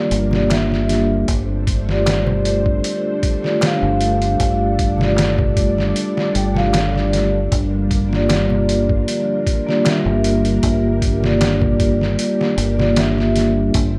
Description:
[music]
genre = trip hop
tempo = 77 BPM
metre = 4/4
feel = swing 53% on 16ths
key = G dorian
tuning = A4 = 440 Hz
[part]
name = vibraphone with soft mallets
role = accompaniment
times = 0.0-13.7 s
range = A3 to G5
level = -22 LUFS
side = equal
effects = harmonic tremolo, tape echo
[part]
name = string machine, cellos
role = sustained chords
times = 0.0-14.0 s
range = G3 to D5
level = -25 LUFS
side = equal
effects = ensemble chorus, vintage 12-bit sampler grit
[part]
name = deep dub fingered electric bass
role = bass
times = 0.1-14.0 s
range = G1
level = -23 LUFS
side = equal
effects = none
[part]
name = trip hop sampler-style drum kit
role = drums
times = 0.1-13.9 s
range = hi-hat, kick drum, snare drum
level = -23 LUFS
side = equal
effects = none
[part]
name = darbuka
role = percussion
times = 0.3-13.1 s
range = none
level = -30 LUFS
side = equal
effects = none
[sound]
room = moderate spring reverb, RT60 2.5 s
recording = none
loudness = -17 LUFS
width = mono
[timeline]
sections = 0.0-14.0 A section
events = none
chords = 0.0 Gm7; 1.3 F69/G; 7.5 Gm7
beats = 0.50 | 1.28 2.06 2.84 3.62 | 4.40 5.18 5.96 6.74 | 7.51 8.29 9.07 9.85 | 10.63 11.41 12.19 12.97 | 13.75

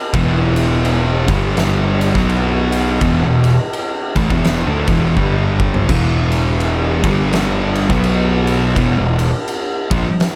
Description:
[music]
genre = stoner and doom metal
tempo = 84 BPM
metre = 4/4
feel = swing 60% on 8ths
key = E minor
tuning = A4 = 439 Hz
[part]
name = thick fuzz guitar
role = riff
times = 0.1-10.0 s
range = E2 to B3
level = -21 LUFS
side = equal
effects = distortion
[part]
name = thick fuzz guitar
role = riff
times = 0.1-10.0 s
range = E2 to B3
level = -21 LUFS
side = equal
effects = distortion
[part]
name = fuzz picked electric bass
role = bass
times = 0.1-10.0 s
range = E1 to D2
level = -22 LUFS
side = equal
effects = overdrive
[part]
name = oversized low-tuned drum kit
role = drums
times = 0.1-10.4 s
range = crash cymbal, kick drum, ride cymbal, snare drum, toms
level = -22 LUFS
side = equal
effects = none
[sound]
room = light reverb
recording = none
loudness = -16 LUFS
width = mono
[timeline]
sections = 0.0-10.4 A section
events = drum fill 5.2-5.9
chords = 0.0 E5; 1.2 G5; 2.1 B5; 3.0 E5; 5.2 G5; 5.9 E5; 7.0 G5; 7.9 B5; 8.8 E5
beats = | 0.14 0.86 1.58 2.29 | 3.01 3.73 4.45 5.17 | 5.88 6.60 7.32 8.04 | 8.76 9.48 10.20

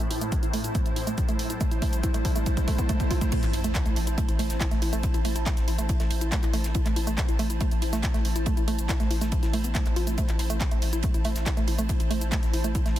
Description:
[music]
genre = driving peak-time techno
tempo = 140 BPM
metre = 4/4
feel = straight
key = A minor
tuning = A4 = 440 Hz
[part]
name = woody wave-folded pluck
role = riff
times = 0.0-12.9 s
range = A3 to F4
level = -32 LUFS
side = right 3 dB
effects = chorus, tube saturation, sidechain pumping, digital delay
[part]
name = swarming drone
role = drone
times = 0.0-3.4 s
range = A2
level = -38 LUFS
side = equal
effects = built-in reverb, phaser, sidechain pumping
[part]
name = techno drum kit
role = drums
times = 0.0-13.0 s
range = crash cymbal, handclaps, hi-hat, shaker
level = -34 LUFS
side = right 1 dB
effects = none
[part]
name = riser, swell and sub drop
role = sound effects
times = 0.4-5.0 s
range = none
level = -38 LUFS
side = equal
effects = none
[part]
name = granular cloud pad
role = texture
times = 0.0-13.0 s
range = E4 to A5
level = -34 LUFS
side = equal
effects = built-in reverb, sidechain pumping
[part]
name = electronic kick drum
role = drums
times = 0.3-12.8 s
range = none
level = -26 LUFS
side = equal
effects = none
[part]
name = damped 70s drum kit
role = drums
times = 3.3-13.0 s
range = ride cymbal, snare drum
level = -42 LUFS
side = right 4 dB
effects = sidechain pumping on cymbals, high-pass filter on cymbals, high-pass filter on snare, high-pass filter on room
[part]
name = saturated sub bass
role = bass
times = 3.4-13.0 s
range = A1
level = -29 LUFS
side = equal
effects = overdrive, sidechain pumping, low-pass filter
[sound]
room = little or no reverb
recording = dense, heavily limited modern master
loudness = -23 LUFS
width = side -13 dB against mid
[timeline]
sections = 0.0-3.3 A section; 3.3-13.0 B section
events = build-up 0.0-3.3; drum fill 0.0-3.3; filter sweep on synth arpeggio sound 0.0-3.3; swell 2.5-3.3; drop 3.3-13.0; impact 3.3-5.0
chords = 0.0 Am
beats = 0.32 0.75 1.18 | 1.61 2.04 2.46 2.89 | 3.32 3.75 4.18 4.61 | 5.04 5.46 5.89 6.32 | 6.75 7.18 7.61 8.04 | 8.46 8.89 9.32 9.75 | 10.18 10.61 11.04 11.46 | 11.89 12.32 12.75

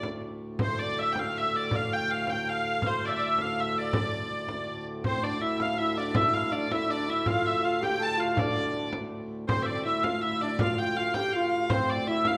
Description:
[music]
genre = medieval dance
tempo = 162 BPM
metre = 3/4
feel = straight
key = D minor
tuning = A4 = 440 Hz
[part]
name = clear hurdy-gurdy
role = melody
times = 0.0-12.4 s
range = C5 to A5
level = -31 LUFS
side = equal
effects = none
[part]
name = hand-pumped harmonium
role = drone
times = 0.0-12.4 s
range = D2 to A2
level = -37 LUFS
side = equal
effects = none
[part]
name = frame drum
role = percussion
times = 0.0-12.4 s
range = none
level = -35 LUFS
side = equal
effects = none
[part]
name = mellow flugelhorn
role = second line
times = 5.0-12.4 s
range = C4 to A4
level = -34 LUFS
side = equal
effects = none
[sound]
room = wet recital hall reverb, RT60 1.3 s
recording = none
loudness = -28 LUFS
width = mono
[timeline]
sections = 0.0-5.0 A section; 5.0-12.4 A section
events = none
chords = none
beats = 0.23 | 0.60 0.97 1.34 | 1.71 2.08 2.45 | 2.82 3.19 3.56 | 3.93 4.30 4.67 | 5.04 5.41 5.78 | 6.15 6.52 6.89 | 7.26 7.63 8.01 | 8.38 8.74 9.12 | 9.49 9.86 10.23 | 10.60 10.97 11.34 | 11.71 12.08

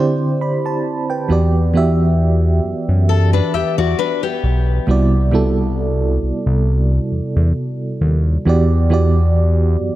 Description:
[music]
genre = contemporary R&B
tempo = 67 BPM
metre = 4/4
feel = swing 54% on 16ths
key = E minor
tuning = A4 = 440 Hz
[part]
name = FM electric piano with tremolo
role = accompaniment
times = 0.0-10.0 s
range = C3 to B5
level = -18 LUFS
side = right 2 dB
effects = none
[part]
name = fat analog bass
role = bass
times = 1.3-9.9 s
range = B1 to F#2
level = -15 LUFS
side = equal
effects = none
[part]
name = fingerpicked steel-string acoustic guitar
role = arpeggios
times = 3.1-4.9 s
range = B3 to E5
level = -20 LUFS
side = left 9 dB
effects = tape echo
[sound]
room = light reverb, small room ambience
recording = dark, warm production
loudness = -14 LUFS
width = side -15 dB against mid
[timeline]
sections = 0.0-1.3 A section; 1.3-10.0 B section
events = break 0.0-1.3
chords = 0.0 D7sus4; 1.3 Em9; 4.9 Cmaj9#11; 8.5 Em9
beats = 0.40 | 1.30 2.19 3.09 3.99 | 4.88 5.78 6.67 7.57 | 8.46 9.36

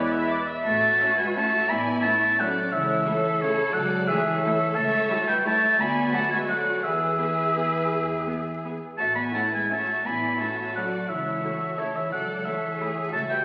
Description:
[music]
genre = classical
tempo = 156-191 BPM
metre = 3/4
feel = rubato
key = A major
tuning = A4 = 437 Hz
[part]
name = rich studio violin section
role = melody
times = 0.0-13.4 s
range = E4 to B5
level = -40 LUFS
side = equal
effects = none
[part]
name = rich studio violin section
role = second line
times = 0.0-13.4 s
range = A4 to G#5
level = -36 LUFS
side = equal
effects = none
[part]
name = warm oboe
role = second line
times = 0.0-13.4 s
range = B4 to B5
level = -27 LUFS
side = equal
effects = none
[part]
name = clear studio viola section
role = accompaniment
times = 0.0-12.9 s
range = F#3 to E5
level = -36 LUFS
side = equal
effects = none
[part]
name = mellow bassoon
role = accompaniment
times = 0.0-0.5 s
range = G#3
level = -39 LUFS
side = equal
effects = none
[part]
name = dark trombone section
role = sustained chords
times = 0.0-0.5 s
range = E3 to G#3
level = -35 LUFS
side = equal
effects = none
[part]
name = mellow French horn section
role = sustained chords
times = 0.0-13.4 s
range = C#3 to B3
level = -34 LUFS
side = equal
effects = none
[part]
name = rich studio cello section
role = bass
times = 0.6-13.4 s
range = C#4 to A4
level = -34 LUFS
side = equal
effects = none
[part]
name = rich studio double bass section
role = bass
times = 0.7-13.4 s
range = A1 to E2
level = -41 LUFS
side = equal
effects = none
[sound]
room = wet scoring stage reverb, RT60 2.1 s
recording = very old 78 rpm record, vinyl crackle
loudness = -24 LUFS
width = mono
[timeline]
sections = 0.6-13.4 A section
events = none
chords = 0.0 E; 0.6 A; 2.7 A/C#; 4.8 A7/C#; 5.8 D; 6.8 E; 9.0 A; 11.1 A/C#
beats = 0.28 | 0.64 1.00 1.36 | 1.70 2.04 2.40 | 2.74 3.08 3.43 | 3.76 4.10 4.45 | 4.77 5.11 5.46 | 5.80 6.14 6.49 | 6.83 7.19 7.56 | 7.91 8.26 8.63 | 8.98 9.34 9.70 | 10.05 10.39 10.75 | 11.09 11.43 11.78 | 12.12 12.45 12.80 | 13.13

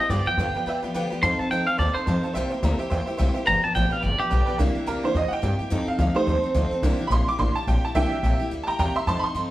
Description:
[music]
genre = rockabilly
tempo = 214 BPM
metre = 4/4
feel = swing 58% on 8ths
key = C mixolydian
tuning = A4 = 438 Hz
[part]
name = twangy electric guitar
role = melody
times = 0.0-4.6 s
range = G4 to C6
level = -24 LUFS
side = right 1 dB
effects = none
[part]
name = picked steel-string acoustic guitar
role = accompaniment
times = 0.0-9.5 s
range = G2 to A4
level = -29 LUFS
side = left 2 dB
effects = none
[part]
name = tack piano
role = accompaniment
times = 0.0-9.5 s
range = E3 to D6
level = -27 LUFS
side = right 2 dB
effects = none
[part]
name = upright bass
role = bass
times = 0.1-9.5 s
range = G1 to G2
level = -25 LUFS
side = equal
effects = none
[sound]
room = moderate large studio reverb, RT60 1.1 s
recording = band playing live in one room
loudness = -21 LUFS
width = side -15 dB against mid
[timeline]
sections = 0.0-4.6 A section; 4.6-9.5 B section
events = honky-tonk piano solo 4.6-9.5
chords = 0.1 G7; 1.2 F7; 2.4 C7; 3.5 G7; 4.6 C7; 5.7 F7; 6.8 C7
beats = | 0.11 0.39 0.67 0.95 | 1.23 1.51 1.79 2.07 | 2.35 2.63 2.91 3.19 | 3.47 3.75 4.03 4.31 | 4.59 4.87 5.15 5.43 | 5.71 5.99 6.27 6.55 | 6.83 7.11 7.39 7.67 | 7.95 8.23 8.51 8.79 | 9.07 9.35

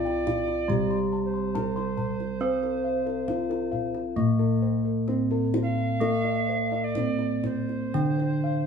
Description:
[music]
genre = Javanese gamelan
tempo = 59-70 BPM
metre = 4/4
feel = straight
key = C slendro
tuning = A4 = 437 Hz
[part]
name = gamelan-type bronze metallophone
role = melody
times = 0.0-8.7 s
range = Bb3-40c to C5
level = -30 LUFS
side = equal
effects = none
[part]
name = alto recorder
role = second line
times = 0.0-8.7 s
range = C5 to F5-27c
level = -32 LUFS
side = right 6 dB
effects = none
[part]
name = gamelan-type bronze metallophone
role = accompaniment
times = 0.0-8.7 s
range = D3+40c to C4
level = -30 LUFS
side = right 2 dB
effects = none
[part]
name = gamelan-type bossed gongs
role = arpeggios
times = 0.0-8.7 s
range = Bb4-40c to C6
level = -36 LUFS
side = left 6 dB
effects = none
[part]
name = gamelan-type bossed gongs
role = bass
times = 0.0-8.7 s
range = C2 to C5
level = -30 LUFS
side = left 2 dB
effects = none
[part]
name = kendang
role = percussion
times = 0.1-8.3 s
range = none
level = -34 LUFS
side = left 2 dB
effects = none
[sound]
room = moderate large studio reverb, RT60 1.1 s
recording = band playing live in one room, nothing above 10.8 kHz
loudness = -24 LUFS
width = side -6 dB against mid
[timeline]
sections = 0.0-8.7 A section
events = none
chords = none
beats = 0.70 1.55 | 2.41 3.28 4.16 5.07 | 6.00 6.96 7.93

